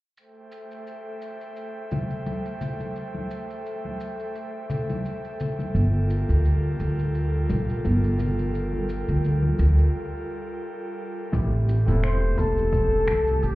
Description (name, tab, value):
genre	sunset chillout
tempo	86 BPM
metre	4/4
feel	swing 55% on 16ths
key	unclear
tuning	A4 = 440 Hz
part	airy breathy pad	sustained chords	0.2-13.6 s	G3 to G5	-32 LUFS	equal	chorus, vintage 12-bit sampler grit
part	electronic shaker and finger snaps	drums	0.2-13.6 s	none	-42 LUFS	equal	overdrive
part	congas	percussion	1.9-9.6 s	none	-31 LUFS	left 1 dB	none
part	upright bass	bass	5.7-13.6 s	E1 to D2	-22 LUFS	equal	none
part	overdriven tine electric piano	accompaniment	11.3-13.6 s	A3 to A4	-31 LUFS	left 1 dB	medium tremolo, auto-pan
part	electronic kick drum	drums	11.3-12.9 s	none	-27 LUFS	equal	overdrive
part	mellow flugelhorn	melody	12.0-13.6 s	G4 to C5	-24 LUFS	left 2 dB	none
room	light reverb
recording	heard muffled through a wall, club reverb, EQ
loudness	-22 LUFS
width	side -18 dB against mid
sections	0.2-11.3 A section; 11.3-13.6 B section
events	break 9.9-11.3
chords	0.2 Am7; 5.8 Gm7; 11.3 Am7